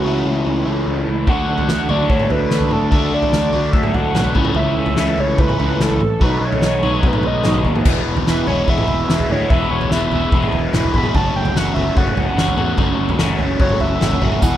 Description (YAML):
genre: indie rock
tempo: 146 BPM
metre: 4/4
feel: straight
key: E mixolydian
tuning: A4 = 440 Hz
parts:
  - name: overdriven synth lead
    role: melody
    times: 0.0-14.6 s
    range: F#4 to B5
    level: -23 LUFS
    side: right 2 dB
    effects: distortion
  - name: overdriven electric guitar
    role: riff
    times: 0.0-14.6 s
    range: E2 to G#4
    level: -22 LUFS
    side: left 7 dB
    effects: phaser
  - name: overdriven semi-hollow guitar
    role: riff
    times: 0.0-14.6 s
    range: B2 to G#4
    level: -24 LUFS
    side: right 6 dB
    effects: ensemble chorus, digital delay
  - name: fuzz picked electric bass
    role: bass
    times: 0.0-14.6 s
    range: E1 to E2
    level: -21 LUFS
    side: equal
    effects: overdrive
  - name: soft string machine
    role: sustained chords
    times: 2.5-14.6 s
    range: G#4 to E6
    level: -34 LUFS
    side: left 1 dB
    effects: none
  - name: loose indie drum kit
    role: drums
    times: 1.3-14.5 s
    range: crash cymbal, kick drum, snare drum, toms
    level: -19 LUFS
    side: equal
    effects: none
  - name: tambourine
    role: percussion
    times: 14.4-14.5 s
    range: none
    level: -32 LUFS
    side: right 7 dB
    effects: none
room: small room ambience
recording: rough home demo mix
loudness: -14 LUFS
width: side -12 dB against mid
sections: 0.0-7.9 A section; 7.9-14.6 B section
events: analog synth lead solo 7.9-14.6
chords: 0.0 A/C#; 1.3 Dadd9; 4.4 A/C#; 6.2 B7; 7.9 Eadd9; 11.2 F#m7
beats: 0.04 0.46 0.87 | 1.28 1.69 2.10 2.52 | 2.93 3.34 3.75 4.16 | 4.57 4.99 5.40 5.81 | 6.22 6.63 7.04 7.45 | 7.86 8.28 8.69 9.10 | 9.51 9.92 10.33 10.74 | 11.15 11.56 11.97 12.38 | 12.79 13.20 13.62 14.03 | 14.44